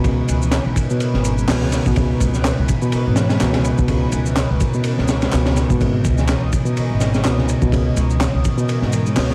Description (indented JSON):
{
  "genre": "breakbeat, breaks",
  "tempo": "125 BPM",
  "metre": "4/4",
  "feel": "swing 56% on 16ths",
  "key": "C# minor",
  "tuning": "A4 = 438 Hz",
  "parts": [
    { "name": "phased analog pad", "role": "sustained chords", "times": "0.0-9.3 s", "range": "E3 to D#5", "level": "-30 LUFS", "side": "equal", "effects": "phaser, chorus, vintage 12-bit sampler grit, sidechain pumping" },
    { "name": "reed electric piano", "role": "riff", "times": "0.0-9.3 s", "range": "B2 to G#3", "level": "-22 LUFS", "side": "equal", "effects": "overdrive, tape echo" },
    { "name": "upright bass", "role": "bass", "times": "0.0-9.3 s", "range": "G#1 to C#2", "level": "-24 LUFS", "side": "equal", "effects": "none" },
    { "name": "crunchy breakbeat drum kit", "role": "drums", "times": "0.0-9.3 s", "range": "hi-hat, kick drum, ride cymbal, snare drum", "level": "-24 LUFS", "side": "equal", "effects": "none" },
    { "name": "electronic shaker and handclaps", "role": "drums", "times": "0.0-9.3 s", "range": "none", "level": "-32 LUFS", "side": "equal", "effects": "overdrive" },
    { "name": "congas", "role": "percussion", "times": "0.4-9.3 s", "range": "none", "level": "-35 LUFS", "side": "equal", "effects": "none" }
  ],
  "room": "studio reverb",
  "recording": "vinyl crackle",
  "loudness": "-18 LUFS",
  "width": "mono",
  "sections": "0.0-9.3 A section",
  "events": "none",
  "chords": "0.0 C#m9"
}